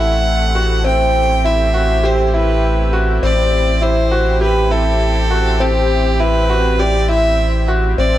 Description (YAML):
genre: piano and strings electronica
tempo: 101 BPM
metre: 4/4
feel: straight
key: unclear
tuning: A4 = 441 Hz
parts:
  - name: clear violin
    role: melody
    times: 0.0-8.2 s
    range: G4 to G5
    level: -19 LUFS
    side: right 1 dB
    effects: none
  - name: lush unison pad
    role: sustained chords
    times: 0.0-8.2 s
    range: A3 to D5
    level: -22 LUFS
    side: right 1 dB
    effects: chorus
  - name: bright upright piano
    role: riff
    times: 0.0-8.2 s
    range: C4 to G4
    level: -18 LUFS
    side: equal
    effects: none
  - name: round analog bass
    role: bass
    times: 0.0-8.2 s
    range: A1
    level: -16 LUFS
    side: equal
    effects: none
room: light reverb, small room reverb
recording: none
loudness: -12 LUFS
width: side -13 dB against mid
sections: 0.0-8.2 A section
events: none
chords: 0.0 Am7; 3.2 C/A